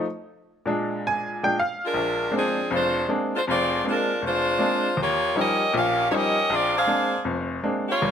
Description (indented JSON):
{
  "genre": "jazz",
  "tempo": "158 BPM",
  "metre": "4/4",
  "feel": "swing 64% on 8ths",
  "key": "Bb major",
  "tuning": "A4 = 441 Hz",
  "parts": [
    { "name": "bright upright piano", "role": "accompaniment", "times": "0.0-8.1 s", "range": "F1 to Ab5", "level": "-25 LUFS", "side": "left 1 dB", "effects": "none" },
    { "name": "bright saxophone section", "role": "melody", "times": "1.8-8.1 s", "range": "F3 to F5", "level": "-22 LUFS", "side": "equal", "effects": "none" }
  ],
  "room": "moderate echo chamber reverb, RT60 1.3 s",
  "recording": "none",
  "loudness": "-21 LUFS",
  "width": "side -8 dB against mid",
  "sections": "0.0-1.9 A section; 1.9-8.1 B section",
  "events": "upright piano solo 0.0-1.9",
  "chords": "0.4 Bb7; 1.9 Bb9; 5.0 Eb9; 6.5 Bb9"
}